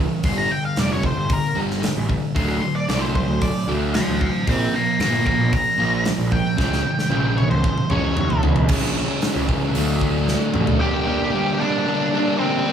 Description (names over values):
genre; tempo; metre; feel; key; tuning
quiet-loud alternative rock; 114 BPM; 4/4; straight; unclear; A4 = 440 Hz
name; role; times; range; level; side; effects
fuzz guitar; riff; 0.0-12.7 s; G2 to D4; -22 LUFS; right 1 dB; distortion
fuzz picked electric bass; bass; 0.0-10.6 s; F1 to Eb2; -24 LUFS; equal; overdrive
big rock drum kit; drums; 0.2-10.8 s; crash cymbal, hi-hat, kick drum, snare drum, toms; -24 LUFS; equal; none
octave-fuzz lead guitar; melody; 0.3-12.7 s; C4 to D6; -24 LUFS; left 1 dB; distortion, digital delay
room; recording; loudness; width
small room ambience; none; -18 LUFS; side -8 dB against mid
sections
0.0-8.7 A section; 8.7-10.8 B section; 10.8-12.7 C section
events
lead electric guitar solo 0.0-8.7; drum fill 6.6-8.7, 10.3-10.8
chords
0.2 G5; 2.4 D; 4.5 Bb5; 6.6 C#m; 9.8 D; 10.8 Gm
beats
| 0.24 0.77 1.30 1.83 | 2.36 2.89 3.42 3.94 | 4.47 5.00 5.53 6.06 | 6.59 7.12 7.64 8.17 | 8.70 9.23 9.75 10.28 | 10.81 11.34 11.86 12.39